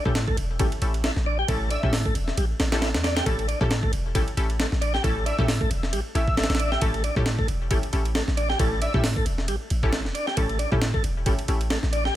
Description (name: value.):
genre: breakbeat, breaks.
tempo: 135 BPM.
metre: 4/4.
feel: swing 56% on 16ths.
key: unclear.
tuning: A4 = 441 Hz.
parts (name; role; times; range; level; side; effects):
tonewheel organ; riff; 0.0-12.1 s; G3 to G4; -30 LUFS; equal; fast rotary speaker, tube saturation, ping-pong delay.
filtered dub chord stab; stabs; 0.1-11.6 s; C#4 to A4; -32 LUFS; left 2 dB; chorus, ping-pong delay.
warm 808-style bass; bass; 0.1-12.1 s; E1 to A2; -26 LUFS; equal; none.
breakbeat sampler-style drum kit; drums; 0.1-12.1 s; hi-hat, kick drum, ride cymbal, snare drum; -26 LUFS; equal; none.
airy dreamy lead; melody; 1.7-1.9, 5.3-9.0 s; E5; -34 LUFS; equal; chorus, AM radio sound, cassette tape, ping-pong delay.
room: digital ambience.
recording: none.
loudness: -22 LUFS.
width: side -13 dB against mid.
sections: 0.0-12.2 A section.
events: none.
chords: 0.0 A7.